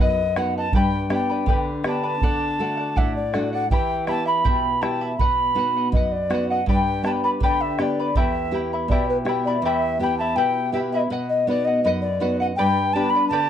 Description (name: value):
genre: andean folk, Andean ensemble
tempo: 81 BPM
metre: 2/4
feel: straight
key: E minor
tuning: A4 = 439 Hz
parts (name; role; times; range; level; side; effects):
- alto ocarina; melody; 0.0-13.5 s; B4 to B5; -23 LUFS; left 1 dB; none
- charango; accompaniment; 0.0-13.5 s; E4 to B5; -27 LUFS; left 3 dB; none
- nylon-string guitar; accompaniment; 0.0-13.5 s; E2 to G4; -25 LUFS; right 1 dB; none
- bombo; percussion; 0.4-9.4 s; none; -23 LUFS; right 1 dB; none
room: moderate small room reverb, RT60 0.5 s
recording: dark, warm production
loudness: -19 LUFS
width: side -9 dB against mid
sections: 0.0-9.6 A section; 9.6-13.5 A section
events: none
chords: 0.0 B; 0.7 G; 2.2 D; 3.7 Em; 5.2 B; 6.7 G; 8.2 Em; 11.1 B; 12.6 G